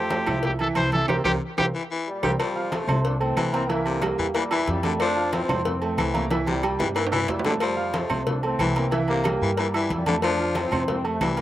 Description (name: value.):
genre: latin, salsa.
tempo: 184 BPM.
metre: 4/4.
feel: straight.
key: F major.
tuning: A4 = 440 Hz.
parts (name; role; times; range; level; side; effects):
clear trumpet; melody; 0.0-2.3 s; G4 to C5; -25 LUFS; equal; slapback echo.
growling baritone saxophone; second line; 0.0-11.4 s; C3 to F3; -28 LUFS; left 4 dB; none.
clear baby grand piano; accompaniment; 0.0-11.4 s; E3 to F6; -28 LUFS; right 4 dB; slapback echo.
upright bass; bass; 0.0-11.4 s; C2 to G2; -29 LUFS; equal; none.
agogo bells and timbales; percussion; 0.1-11.4 s; none; -32 LUFS; right 4 dB; slapback echo.
congas; percussion; 0.1-11.4 s; none; -31 LUFS; equal; none.
cowbell; percussion; 0.1-11.4 s; none; -33 LUFS; left 6 dB; slapback echo.
claves; percussion; 0.3-11.4 s; none; -35 LUFS; right 6 dB; none.
mellow trombone section; melody; 2.1-11.4 s; Bb2 to D4; -29 LUFS; left 1 dB; slapback echo.
room: little or no reverb.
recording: recorded outdoors, with no room sound.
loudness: -21 LUFS.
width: side -13 dB against mid.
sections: 0.0-2.4 A section; 2.4-11.4 B section.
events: band accent 1.1-2.4; drum fill 1.6-2.4, 6.3-7.6.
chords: 0.0 Fmaj9; 1.1 C7; 2.4 Fmaj9; 3.7 C7; 5.0 Fmaj7; 6.3 C7; 7.6 Fmaj9; 8.9 C7; 10.2 Fmaj7.